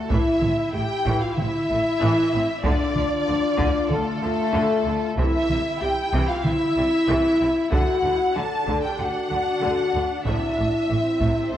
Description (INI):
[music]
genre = cinematic, epic orchestral film score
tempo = 95 BPM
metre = 4/4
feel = straight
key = unclear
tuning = A4 = 440 Hz
[part]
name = warm symphonic violin section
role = melody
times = 0.0-11.6 s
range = A4 to A5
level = -29 LUFS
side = equal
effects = none
[part]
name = warm symphonic violin section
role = second line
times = 0.0-11.6 s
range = A4 to A5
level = -29 LUFS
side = equal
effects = none
[part]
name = warm symphonic viola section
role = accompaniment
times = 0.0-11.6 s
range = C3 to F#4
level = -31 LUFS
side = right 1 dB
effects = none
[part]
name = mellow French horn section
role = sustained chords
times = 0.0-11.6 s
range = A3 to A4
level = -23 LUFS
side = left 2 dB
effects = none
[part]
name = dark symphonic double bass section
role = bass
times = 0.1-11.6 s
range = A1 to D2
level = -30 LUFS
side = right 2 dB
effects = none
[part]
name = rich symphonic cello section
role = bass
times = 0.1-11.6 s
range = A2 to D3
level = -31 LUFS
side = right 1 dB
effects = none
[part]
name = taiko ensemble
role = drums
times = 0.1-11.6 s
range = none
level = -26 LUFS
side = equal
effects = none
[sound]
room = moderate scoring stage reverb, RT60 1.8 s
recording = worn, warbling old tape, cassette tape, warbly pitch drift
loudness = -20 LUFS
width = side -11 dB against mid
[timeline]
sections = 0.0-11.6 A section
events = none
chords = 0.1 A5; 2.6 Dm; 5.2 C; 7.7 D; 10.2 Am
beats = | 0.11 0.74 1.37 2.01 | 2.64 3.27 3.91 4.54 | 5.18 5.81 6.45 7.08 | 7.71 8.35 8.98 9.62 | 10.25 10.88 11.52